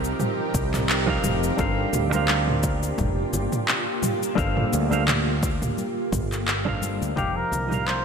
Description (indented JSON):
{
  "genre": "sunset chillout",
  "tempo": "86 BPM",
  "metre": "4/4",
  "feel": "swing 55% on 16ths",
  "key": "G minor",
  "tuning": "A4 = 440 Hz",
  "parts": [
    { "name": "shimmering ambient pad", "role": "sustained chords", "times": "0.0-8.0 s", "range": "F3 to Bb4", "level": "-28 LUFS", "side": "right 2 dB", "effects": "chorus, built-in reverb" },
    { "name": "fretless electric bass", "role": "bass", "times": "0.0-8.0 s", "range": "F1 to D2", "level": "-27 LUFS", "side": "equal", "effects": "none" },
    { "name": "deep house drum kit", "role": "drums", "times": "0.0-8.0 s", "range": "cabasa, handclaps, toms", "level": "-27 LUFS", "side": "equal", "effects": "overdrive, gated reverb" },
    { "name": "congas", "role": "percussion", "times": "0.2-7.8 s", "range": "none", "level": "-35 LUFS", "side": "left 3 dB", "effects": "none" },
    { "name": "electronic kick drum", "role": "drums", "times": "0.5-7.3 s", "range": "none", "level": "-29 LUFS", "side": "equal", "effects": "overdrive" },
    { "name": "semi-hollow electric guitar", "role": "accompaniment", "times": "1.1-8.0 s", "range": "F3 to F5", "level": "-28 LUFS", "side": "moving between left 5 dB and right 5 dB", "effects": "auto-pan, digital delay" },
    { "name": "trumpet with cup mute", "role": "melody", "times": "7.2-8.0 s", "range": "G4 to C5", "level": "-26 LUFS", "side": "left 1 dB", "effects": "none" }
  ],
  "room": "moderate plate reverb, RT60 3.1 s",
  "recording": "bright 1980s-style digital production",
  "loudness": "-21 LUFS",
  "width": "side -6 dB against mid",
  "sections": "0.0-8.0 A section",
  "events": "fade-out 5.3-8.0",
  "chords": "0.0 F9sus4; 1.6 Gm11; 7.2 F9sus4"
}